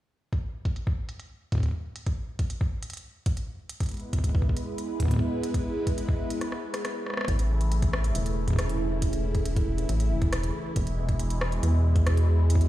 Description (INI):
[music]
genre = IDM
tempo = 138 BPM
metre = 4/4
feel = straight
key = A major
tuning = A4 = 437 Hz
[part]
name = electronic kick drum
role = drums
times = 0.3-12.6 s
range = none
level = -26 LUFS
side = equal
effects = none
[part]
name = organic electronic drum kit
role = drums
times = 0.3-12.7 s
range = hi-hat, rim click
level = -36 LUFS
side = equal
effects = low-pass filter on hats, low-pass filter on snare, dub echo
[part]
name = phased analog pad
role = sustained chords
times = 3.8-12.7 s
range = B2 to B4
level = -31 LUFS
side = equal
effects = phaser, chorus
[part]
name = rubbery square bass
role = bass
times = 7.3-12.7 s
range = E1 to E2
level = -25 LUFS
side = equal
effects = none
[sound]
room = little or no reverb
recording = played on a big sound system in a bare room, stone room reverb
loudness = -25 LUFS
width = side -14 dB against mid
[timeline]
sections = 0.3-7.3 A section; 7.3-12.7 B section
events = filter sweep on drum 0.3-7.3; break 6.4-7.3; drum fill 6.4-7.3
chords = 0.3 N.C.; 3.8 E; 7.3 A; 10.8 E